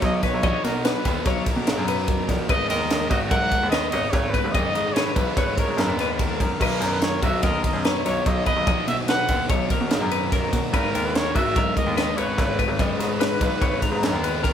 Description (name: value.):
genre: math rock and midwest emo.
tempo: 146 BPM.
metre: 5/4.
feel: straight.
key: unclear.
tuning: A4 = 440 Hz.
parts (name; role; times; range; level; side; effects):
breathy trumpet; melody; 0.0-14.4 s; A#4 to F#5; -27 LUFS; right 2 dB; none.
twelve-string electric guitar; arpeggios; 0.0-14.5 s; F#4 to A#5; -28 LUFS; left 6 dB; tremolo.
overdriven semi-hollow guitar; riff; 0.0-14.5 s; G#2 to D#4; -28 LUFS; right 1 dB; none.
bright concert grand piano; bass; 0.0-14.5 s; F#1 to B2; -27 LUFS; equal; none.
crisp fusion drum kit; drums; 0.0-14.5 s; crash cymbal, kick drum, ride cymbal, snare drum; -24 LUFS; equal; none.
room: light reverb.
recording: band playing live in one room.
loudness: -20 LUFS.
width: side -9 dB against mid.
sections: 0.0-14.5 A section.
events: none.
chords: 0.0 Bmaj9; 2.5 G#m; 6.6 Bmaj9; 10.7 G#m.